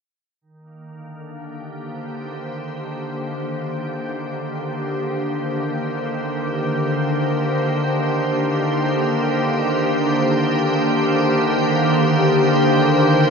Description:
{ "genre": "ambient", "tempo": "free time", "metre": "none", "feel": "none", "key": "C minor", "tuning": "A4 = 439 Hz", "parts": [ { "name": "soft additive organ-like pad", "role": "sustained chords", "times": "0.8-13.3 s", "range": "D3 to C5", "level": "-18 LUFS", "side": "equal", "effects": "ensemble chorus, built-in reverb" } ], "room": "wet lush hall reverb, RT60 2.1 s", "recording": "dreamy mix soaked in reverb", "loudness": "-18 LUFS", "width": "side -5 dB against mid", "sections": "0.4-13.3 A section", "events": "fade-in on ambient pad 0.4-13.3", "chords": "0.4 Cm9" }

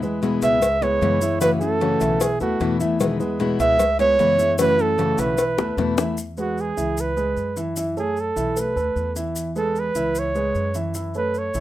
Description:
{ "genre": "latin, Cuban son and guajira", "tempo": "151 BPM", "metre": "4/4", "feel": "straight", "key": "E major", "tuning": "A4 = 440 Hz", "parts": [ { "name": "fingerpicked steel-string acoustic guitar", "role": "accompaniment", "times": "0.0-6.2 s", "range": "B2 to F#4", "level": "-23 LUFS", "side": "left 4 dB", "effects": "none" }, { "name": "dark grand piano", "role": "arpeggios", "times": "0.0-11.6 s", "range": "E3 to E5", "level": "-26 LUFS", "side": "equal", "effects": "none" }, { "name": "upright bass", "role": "bass", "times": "0.0-11.6 s", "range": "B1 to F#2", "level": "-30 LUFS", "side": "equal", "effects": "none" }, { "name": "maracas", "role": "percussion", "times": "0.0-11.6 s", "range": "none", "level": "-36 LUFS", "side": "left 3 dB", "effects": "none" }, { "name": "cowbell and bongos", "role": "percussion", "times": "0.2-6.1 s", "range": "none", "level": "-26 LUFS", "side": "left 6 dB", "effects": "none" }, { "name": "warm flugelhorn", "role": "melody", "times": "0.4-11.6 s", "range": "F#4 to E5", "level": "-21 LUFS", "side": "right 2 dB", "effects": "none" } ], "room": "light reverb", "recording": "rough home demo mix", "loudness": "-19 LUFS", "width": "side -14 dB against mid", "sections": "0.0-6.2 A section; 6.2-11.6 B section", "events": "drum fill 5.6-6.2; flugelhorn solo 6.2-11.6", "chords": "0.0 E; 0.6 C#m7; 1.4 F#m7; 2.2 B7sus4; 3.0 Emaj7; 3.8 C#m7; 4.6 F#m7; 5.4 B7sus4; 6.2 E; 7.0 C#m7; 7.8 F#m7; 8.6 B7sus4; 9.4 E; 10.2 C#m7; 10.9 F#m7" }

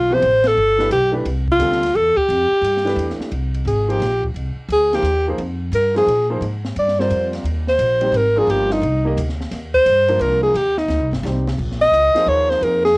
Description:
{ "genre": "modal jazz", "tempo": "174 BPM", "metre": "3/4", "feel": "swing 64% on 8ths", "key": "F dorian from 3.3 s", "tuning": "A4 = 441 Hz", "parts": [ { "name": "mellow alto saxophone", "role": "melody", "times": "0.0-13.0 s", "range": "Eb4 to Eb5", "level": "-15 LUFS", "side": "equal", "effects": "none" }, { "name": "upright bass", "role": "bass", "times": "0.0-13.0 s", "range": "G1 to Bb2", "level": "-22 LUFS", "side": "equal", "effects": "none" }, { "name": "warm concert grand piano", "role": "accompaniment", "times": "0.1-12.8 s", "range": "C3 to Eb5", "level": "-25 LUFS", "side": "right 1 dB", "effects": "cassette tape" }, { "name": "compact cocktail drum kit", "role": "drums", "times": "0.2-12.9 s", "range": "crash cymbal, hi-hat, kick drum, ride cymbal, snare drum", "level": "-32 LUFS", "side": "equal", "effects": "cassette tape" } ], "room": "light reverb", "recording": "home recording on cassette", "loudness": "-15 LUFS", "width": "side -28 dB against mid", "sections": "0.0-3.3 A section; 3.3-11.6 B section; 11.6-13.0 B section", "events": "band accent 0.4; alto saxophone solo 3.3-13.0; drum fill 10.9-11.6", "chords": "0.0 Fadd9; 3.3 Fm11; 7.5 Cm; 11.6 Bbm11" }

